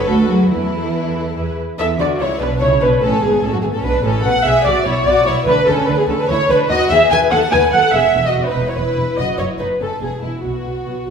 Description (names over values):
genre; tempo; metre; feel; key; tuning
quick classical-period movement for string orchestra; 145 BPM; 3/4; straight; E major from 6.7 s; A4 = 439 Hz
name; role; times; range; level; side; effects
dark studio violin section; melody; 0.0-11.1 s; G#3 to B4; -22 LUFS; left 3 dB; none
warm symphonic violin section; second line; 0.0-11.1 s; E4 to G#5; -23 LUFS; equal; none
dark symphonic viola section; accompaniment; 0.0-11.1 s; E4 to G#5; -17 LUFS; right 1 dB; none
rich studio cello section; bass; 0.0-11.1 s; E2 to A3; -22 LUFS; right 2 dB; none
warm symphonic double bass section; bass; 0.0-11.1 s; E1 to E2; -23 LUFS; right 2 dB; none
room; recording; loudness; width
wet recital hall reverb, RT60 1.6 s; recorded in a church or concert hall; -14 LUFS; side -6 dB against mid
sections
0.0-1.8 A section; 1.8-11.1 A section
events
none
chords
0.1 Bm7/D; 0.5 Esus4; 1.4 E; 1.8 Bmadd9; 3.0 B7sus2/G#; 4.2 E7sus2/B; 5.5 Bm9/D; 6.7 Emaj9/D#; 7.9 E5; 9.2 F#m6; 10.0 E; 10.4 B5